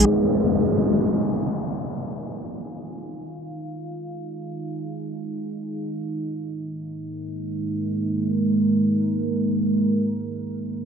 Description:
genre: drum and bass.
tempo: free time.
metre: none.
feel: none.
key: unclear.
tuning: A4 = 440 Hz.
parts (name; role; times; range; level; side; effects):
deep dark ambient pad; sustained chords; 0.0-10.9 s; Ab3 to F5; -24 LUFS; right 1 dB; chorus, built-in reverb.
downlifter; sound effects; 0.1-2.9 s; none; -24 LUFS; left 2 dB; none.
room: moderate spring reverb, RT60 1.5 s.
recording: echo-heavy mix, low-pass filter.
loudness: -22 LUFS.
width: side -6 dB against mid.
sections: 0.1-10.9 A section.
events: filter sweep on ambient pad 0.1-10.9; filter sweep 0.1-10.9.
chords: 0.1 Eb5; 5.8 Ab5.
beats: free time.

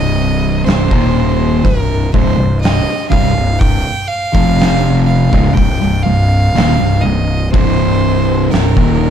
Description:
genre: stoner and doom metal.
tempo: 61 BPM.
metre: 4/4.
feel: straight.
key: C minor.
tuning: A4 = 440 Hz.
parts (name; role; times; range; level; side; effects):
bright violin; melody; 0.0-9.1 s; Bb4 to G5; -19 LUFS; right 3 dB; digital delay.
fuzz guitar; riff; 0.0-9.1 s; C2 to F3; -14 LUFS; left 1 dB; distortion.
fuzz fingered electric bass; bass; 0.0-9.1 s; C1 to F1; -17 LUFS; equal; overdrive.
oversized low-tuned drum kit; drums; 0.7-9.0 s; hi-hat, kick drum, snare drum; -16 LUFS; equal; none.
room: little or no reverb.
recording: dark, warm production.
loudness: -10 LUFS.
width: side -8 dB against mid.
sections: 0.0-9.1 A section.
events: none.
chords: 0.0 Cm; 4.4 F5; 5.3 Cm.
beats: 0.67 1.65 2.63 | 3.62 4.60 5.58 6.56 | 7.54 8.53.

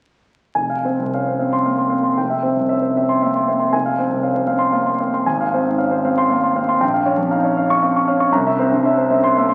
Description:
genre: classical, romantic character piece for solo piano.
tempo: 116 BPM.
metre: 3/4.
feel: rubato.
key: F minor.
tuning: A4 = 439 Hz.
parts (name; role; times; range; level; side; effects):
warm grand piano; solo; 0.6-9.5 s; F1 to Db6; -18 LUFS; equal; none.
room: wet scoring stage reverb, RT60 1.7 s.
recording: very old 78 rpm record, vinyl crackle.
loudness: -18 LUFS.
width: mono.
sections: 0.6-9.5 A section.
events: none.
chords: 0.6 Fm; 2.2 C/F; 3.7 Fm; 5.3 Fm/Ab; 6.8 Gm7b5/Bb; 8.3 C7.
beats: | 0.55 1.13 1.66 | 2.18 2.70 3.22 | 3.74 4.23 4.74 | 5.26 5.78 6.29 | 6.81 7.32 7.84 | 8.35 8.85 9.36.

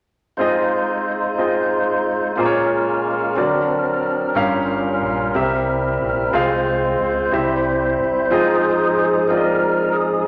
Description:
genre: gospel.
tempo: 61 BPM (dotted quarters).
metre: 6/8.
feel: straight.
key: F minor.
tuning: A4 = 440 Hz.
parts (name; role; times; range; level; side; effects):
clear grand piano; accompaniment; 0.4-10.3 s; G2 to F5; -23 LUFS; equal; none.
tonewheel organ; sustained chords; 0.4-10.3 s; F3 to C5; -21 LUFS; equal; fast rotary speaker, overdrive.
deep dub fingered electric bass; bass; 4.3-8.3 s; G1 to Db2; -32 LUFS; equal; none.
room: wet large studio reverb, RT60 1.2 s.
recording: none.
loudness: -19 LUFS.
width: mono.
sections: 0.4-8.3 A section; 8.3-10.3 B section.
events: tonewheel organ solo 8.3-10.3.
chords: 0.4 Fm7; 2.4 Bbm7; 3.4 Daug7; 4.4 Gm7b5; 5.3 C7; 6.3 Fm/C; 7.3 C; 8.3 Fm7.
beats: | 0.40 1.39 | 2.38 3.37 | 4.36 5.35 | 6.34 7.33 | 8.31 9.30.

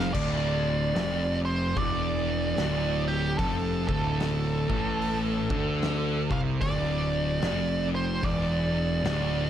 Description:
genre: stoner and doom metal.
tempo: 74 BPM.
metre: 4/4.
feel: swing 62% on 8ths.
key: D minor.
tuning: A4 = 442 Hz.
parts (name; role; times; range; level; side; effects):
fuzz lead guitar; melody; 0.0-9.5 s; G4 to F5; -30 LUFS; right 2 dB; wah, distortion, slapback echo.
thick fuzz guitar; riff; 0.0-9.5 s; D2 to D3; -31 LUFS; left 8 dB; distortion.
thick fuzz guitar; riff; 0.0-9.5 s; D2 to D3; -31 LUFS; right 7 dB; distortion.
fuzz picked electric bass; bass; 0.0-9.5 s; D1 to D2; -32 LUFS; left 1 dB; overdrive, tube saturation.
oversized low-tuned drum kit; drums; 0.1-9.3 s; crash cymbal, hi-hat, kick drum, snare drum; -34 LUFS; left 1 dB; none.
room: small room ambience.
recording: none.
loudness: -25 LUFS.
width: side -10 dB against mid.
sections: 0.1-9.5 A section.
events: none.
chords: 0.1 Dm.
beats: | 0.14 0.95 1.76 2.56 | 3.37 4.18 4.99 5.80 | 6.61 7.42 8.23 9.04.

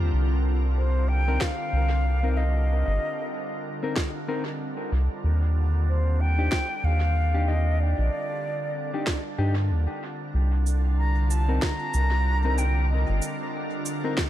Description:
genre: ambient dub.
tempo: 94 BPM.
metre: 4/4.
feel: swing 59% on 16ths.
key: C minor.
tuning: A4 = 440 Hz.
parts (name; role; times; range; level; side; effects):
soft additive organ-like pad; sustained chords; 0.0-14.3 s; D3 to Bb4; -33 LUFS; right 1 dB; ensemble chorus, built-in reverb.
soft dub sub bass; bass; 0.0-13.2 s; G1 to G2; -22 LUFS; equal; tube saturation.
concert flute; melody; 0.8-13.5 s; C5 to Bb5; -31 LUFS; left 1 dB; dub echo.
mellow electric guitar; stabs; 1.3-14.1 s; C4 to Bb4; -34 LUFS; left 4 dB; dub echo.
electronic kick drum; drums; 1.4-14.3 s; none; -28 LUFS; equal; none.
electronic snare drum and cabasa; drums; 1.4-14.3 s; none; -34 LUFS; right 1 dB; dub echo.
room: digital ambience.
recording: echo-heavy mix.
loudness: -23 LUFS.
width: side -13 dB against mid.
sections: 0.0-14.3 A section.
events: none.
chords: 0.1 Cm7; 5.2 Ebmaj7; 10.3 C7(no3).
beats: | 0.13 0.77 1.41 2.05 | 2.69 3.33 3.96 4.60 | 5.24 5.88 6.52 7.16 | 7.79 8.43 9.07 9.71 | 10.35 10.98 11.62 12.26 | 12.90 13.54 14.18.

